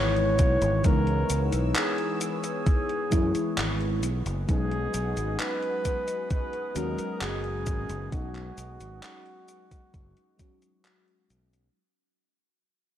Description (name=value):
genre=vaporwave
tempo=66 BPM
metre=4/4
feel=straight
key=unclear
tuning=A4 = 440 Hz
part: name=warm flugelhorn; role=melody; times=0.0-10.8 s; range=F#4 to C#5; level=-32 LUFS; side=equal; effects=vintage 12-bit sampler grit, tape echo
part: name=mellow FM electric piano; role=accompaniment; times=0.0-11.8 s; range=E3 to F#4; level=-32 LUFS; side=left 2 dB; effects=analog chorus, analog delay
part: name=lush unison pad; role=sustained chords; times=0.0-11.7 s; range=E3 to E6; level=-37 LUFS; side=equal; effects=chorus, phaser
part: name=overdriven fingered electric bass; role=bass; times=0.0-11.7 s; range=F#1 to F#2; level=-29 LUFS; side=equal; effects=none
part: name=gated 80s digital drum machine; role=drums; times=0.2-11.7 s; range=cabasa, handclaps, hi-hat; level=-33 LUFS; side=equal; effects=gated reverb, overdrive
part: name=electronic kick drum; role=drums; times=0.4-10.6 s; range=none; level=-25 LUFS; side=equal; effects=overdrive
room=light reverb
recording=none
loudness=-25 LUFS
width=side -11 dB against mid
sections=0.0-11.8 A section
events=fade-out 2.1-11.8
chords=0.0 C#m9; 4.0 B6